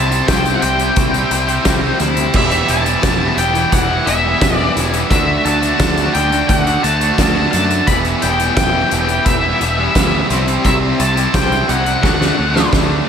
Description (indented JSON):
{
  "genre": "quiet-loud alternative rock",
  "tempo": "87 BPM",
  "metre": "4/4",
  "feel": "straight",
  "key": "E minor",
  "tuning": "A4 = 440 Hz",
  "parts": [
    { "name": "octave-fuzz lead guitar", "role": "melody", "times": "0.0-12.7 s", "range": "E5 to B5", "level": "-18 LUFS", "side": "left 1 dB", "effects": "distortion, slapback echo" },
    { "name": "biting overdriven guitar", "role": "riff", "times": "0.0-13.1 s", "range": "C3 to F#4", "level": "-21 LUFS", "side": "right 9 dB", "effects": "slapback echo" },
    { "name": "crunchy overdriven guitar", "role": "riff", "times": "0.0-13.1 s", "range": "C3 to F#4", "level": "-21 LUFS", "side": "left 8 dB", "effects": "tremolo, slapback echo" },
    { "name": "scooped high-gain guitar", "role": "riff", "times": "0.0-13.1 s", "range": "C3 to E4", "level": "-25 LUFS", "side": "left 1 dB", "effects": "distortion" },
    { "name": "growling picked electric bass", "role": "bass", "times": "0.0-13.0 s", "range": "E1 to F#2", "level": "-20 LUFS", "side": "equal", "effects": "overdrive" },
    { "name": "loose indie drum kit", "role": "drums", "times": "0.1-12.9 s", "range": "crash cymbal, hi-hat, kick drum, snare drum", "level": "-18 LUFS", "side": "equal", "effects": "none" }
  ],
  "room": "moderate lush hall reverb, RT60 2.6 s",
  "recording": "big arena sound",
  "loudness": "-12 LUFS",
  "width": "side -7 dB against mid",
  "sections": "0.0-13.1 A section",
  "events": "drum fill 12.0-13.1",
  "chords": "0.0 C; 2.3 Em; 5.1 D; 7.9 Em; 10.3 C; 12.0 D"
}